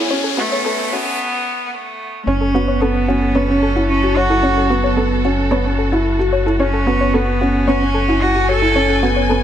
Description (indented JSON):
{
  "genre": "piano and strings electronica",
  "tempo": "111 BPM",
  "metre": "4/4",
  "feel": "straight",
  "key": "F# minor",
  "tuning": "A4 = 441 Hz",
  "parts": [
    { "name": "rich cello", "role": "melody", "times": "0.0-9.3 s", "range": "A3 to A4", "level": "-19 LUFS", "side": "right 1 dB", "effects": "tape echo" },
    { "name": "rich studio string section", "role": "sustained chords", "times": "0.0-9.4 s", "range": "F#3 to G#5", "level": "-26 LUFS", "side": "equal", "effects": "none" },
    { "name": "soft round pluck", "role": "arpeggios", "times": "0.0-9.4 s", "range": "F#4 to C#5", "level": "-24 LUFS", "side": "left 4 dB", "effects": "chorus, tape echo" },
    { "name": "felt-muted upright piano", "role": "riff", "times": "0.0-9.4 s", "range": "B3 to F#4", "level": "-19 LUFS", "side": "right 1 dB", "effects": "tape echo" },
    { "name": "round analog bass", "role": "bass", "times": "0.0-9.4 s", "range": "F#1", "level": "-20 LUFS", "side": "equal", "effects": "high-pass filter" },
    { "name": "riser", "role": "sound effects", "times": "0.0-1.2 s", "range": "none", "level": "-24 LUFS", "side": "left 2 dB", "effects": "none" }
  ],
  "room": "moderate lush hall reverb, RT60 2.7 s",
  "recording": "high-pass filter",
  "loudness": "-14 LUFS",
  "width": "side -10 dB against mid",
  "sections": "0.0-2.3 A section; 2.3-9.4 B section",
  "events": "build-up 0.0-2.3; riser 0.0-1.2; filter sweep on synth arpeggio sound 0.0-2.3; break 1.2-2.3; drop 2.3-9.4",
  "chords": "0.0 F#m"
}